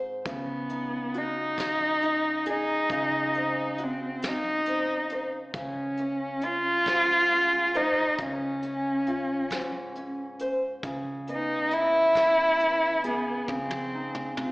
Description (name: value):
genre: acoustic folk-pop ballad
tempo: 45 BPM (dotted quarters)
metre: 6/8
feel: straight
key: Db major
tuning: A4 = 438 Hz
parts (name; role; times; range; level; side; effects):
- nylon-string guitar; accompaniment; 0.0-14.5 s; Ab2 to C5; -33 LUFS; equal; none
- woody fretless electric bass; bass; 0.0-14.5 s; Db2; -43 LUFS; equal; none
- dark cello; melody; 0.3-14.5 s; B3 to F4; -25 LUFS; equal; none
- soft brush drum kit; drums; 0.3-14.5 s; hi-hat, kick drum, snare drum, toms; -36 LUFS; equal; none
room: moderate club reverb, RT60 0.5 s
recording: live gig heard through the venue's PA, recital hall reverb, AM radio sound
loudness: -24 LUFS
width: side -25 dB against mid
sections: 0.0-14.5 A section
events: drum fill 13.5-14.5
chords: 0.3 Db9sus4; 2.9 Ab7/Db; 5.5 Dbmaj7; 10.8 E/Db; 13.5 Dbmaj9